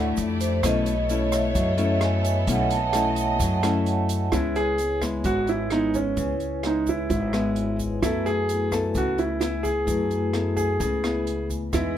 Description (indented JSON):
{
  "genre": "bossa nova",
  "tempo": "130 BPM",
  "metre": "4/4",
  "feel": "straight",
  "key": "unclear",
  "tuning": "A4 = 441 Hz",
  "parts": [
    { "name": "nylon-string guitar", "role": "accompaniment", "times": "0.0-12.0 s", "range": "G#2 to A4", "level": "-28 LUFS", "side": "left 4 dB", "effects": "none" },
    { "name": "vibraphone with medium hard mallets", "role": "accompaniment", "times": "0.0-12.0 s", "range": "A3 to A5", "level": "-28 LUFS", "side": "right 1 dB", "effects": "none" },
    { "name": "rich studio violin section", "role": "sustained chords", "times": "0.0-4.3, 11.7-12.0 s", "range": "A3 to B5", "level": "-34 LUFS", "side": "left 2 dB", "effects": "none" },
    { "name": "upright bass", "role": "bass", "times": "0.0-12.0 s", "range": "G#1 to F#2", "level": "-28 LUFS", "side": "equal", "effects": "none" },
    { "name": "open jazz drum kit", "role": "drums", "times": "0.2-11.8 s", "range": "hi-hat, kick drum, rim click", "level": "-32 LUFS", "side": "right 1 dB", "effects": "none" },
    { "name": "egg shaker", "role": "percussion", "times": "0.2-12.0 s", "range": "none", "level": "-41 LUFS", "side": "right 5 dB", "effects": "none" },
    { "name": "warm grand piano", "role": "melody", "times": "4.3-12.0 s", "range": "C#4 to G#4", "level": "-25 LUFS", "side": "right 2 dB", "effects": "none" }
  ],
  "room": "light reverb",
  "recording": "none",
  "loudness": "-21 LUFS",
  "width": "side -10 dB against mid",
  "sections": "0.0-4.3 A section; 4.3-12.0 B section",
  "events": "vibraphone solo 0.0-4.3",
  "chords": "0.2 Fmaj13; 0.6 B9sus4; 4.3 C#m7; 8.0 F#m11"
}